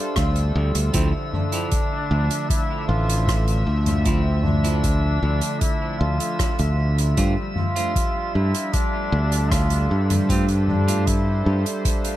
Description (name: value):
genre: ambient dub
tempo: 77 BPM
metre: 4/4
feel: straight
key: D minor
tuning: A4 = 436 Hz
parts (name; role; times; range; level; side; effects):
- trombone with straight mute; melody; 0.0-12.2 s; C4 to F4; -29 LUFS; equal; dub echo
- warm analog pad; sustained chords; 0.0-12.2 s; D3 to E5; -28 LUFS; equal; chorus
- drifting glass-harmonics texture; texture; 0.0-12.2 s; E5; -35 LUFS; left 2 dB; chorus, built-in reverb
- modern bright fingered electric bass; bass; 0.2-11.6 s; A1 to G2; -20 LUFS; equal; none
- electronic kick drum; drums; 0.2-12.0 s; none; -24 LUFS; equal; overdrive
- soft-mallet drum kit; drums; 0.2-12.2 s; hi-hat, rim click, toms; -28 LUFS; left 1 dB; none
- clean electric guitar; stabs; 0.9-11.0 s; F3 to F4; -33 LUFS; right 4 dB; vintage 12-bit sampler grit, dub echo
room: light reverb, small room ambience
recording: none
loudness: -19 LUFS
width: side -14 dB against mid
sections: 0.0-12.2 A section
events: none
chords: 0.0 G9sus4; 0.9 Dm9; 7.2 G9sus4